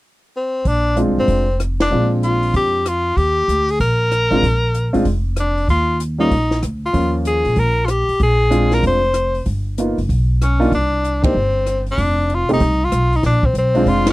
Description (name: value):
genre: jazz, small-group swing and bop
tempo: 191 BPM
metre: 4/4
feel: swing 64% on 8ths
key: Bb mixolydian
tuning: A4 = 440 Hz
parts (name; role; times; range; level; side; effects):
- bright tenor saxophone; melody; 0.4-14.1 s; C4 to C5; -18 LUFS; left 1 dB; none
- upright bass; bass; 0.7-14.1 s; E1 to Bb2; -18 LUFS; equal; none
- compact cocktail drum kit; drums; 0.7-14.1 s; hi-hat, kick drum, ride cymbal, rim click, snare drum; -21 LUFS; equal; none
- warm baby grand piano; accompaniment; 1.0-14.1 s; F3 to G4; -19 LUFS; equal; none
room: little or no reverb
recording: dry, close 1970s-style studio recording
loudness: -15 LUFS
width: side -18 dB against mid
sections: 0.6-14.1 A section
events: band accent 1.8, 11.2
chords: 0.0 N.C.; 0.6 Bb9; 3.2 Eb; 4.4 Bb; 5.7 Eb7sus2; 8.2 Bb9; 9.5 G7alt; 10.7 C5; 12.0 F7(no3); 13.2 Bb9